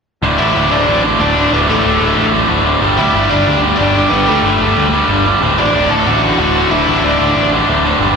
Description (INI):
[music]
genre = punk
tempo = 185 BPM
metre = 4/4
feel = straight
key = D major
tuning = A4 = 440 Hz
[part]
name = overdriven semi-hollow guitar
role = riff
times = 0.2-8.2 s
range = D2 to G3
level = -15 LUFS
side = right 11 dB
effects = slapback echo
[part]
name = tight distorted guitar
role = riff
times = 0.2-8.2 s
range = D2 to G3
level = -16 LUFS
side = left 11 dB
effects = distortion, slapback echo
[part]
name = fuzz picked electric bass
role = bass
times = 0.2-8.1 s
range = D1 to D2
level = -18 LUFS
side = equal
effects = overdrive
[part]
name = biting lead guitar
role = melody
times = 0.4-7.5 s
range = A3 to A5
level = -17 LUFS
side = left 2 dB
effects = overdrive, digital delay
[sound]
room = light reverb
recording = live gig heard through the venue's PA, recital hall reverb, lossy compression artefacts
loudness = -10 LUFS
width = side -5 dB against mid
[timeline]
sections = 0.2-8.2 A section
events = none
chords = 0.2 D5; 2.8 G5; 5.4 D